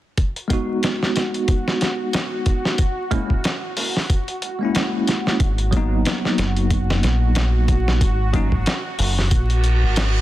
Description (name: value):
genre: trip hop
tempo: 92 BPM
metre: 4/4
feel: swing 57% on 16ths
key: G# minor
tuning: A4 = 440 Hz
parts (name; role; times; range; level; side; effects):
- dusty soul sampler-style drum kit; drums; 0.2-10.1 s; hi-hat, kick drum, snare drum; -21 LUFS; equal; none
- bowed-like drone; texture; 1.2-10.2 s; F#4; -30 LUFS; right 1 dB; built-in reverb
- bell-like tine electric piano; accompaniment; 0.5-8.5 s; F#3 to F#4; -24 LUFS; equal; medium stereo tremolo, tape echo
- deep dub fingered electric bass; bass; 5.4-10.2 s; F#1 to A#1; -19 LUFS; equal; none
- reverse cymbal; sound effects; 9.5-10.2 s; none; -26 LUFS; right 4 dB; none
room: light reverb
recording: dense, heavily limited modern master, vinyl crackle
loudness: -18 LUFS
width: side -15 dB against mid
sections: 0.2-10.2 A section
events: reverse cymbal 9.5-10.2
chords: 0.2 G#m7; 2.8 F#7/G#; 5.4 G#m7; 8.0 D#m (rootless)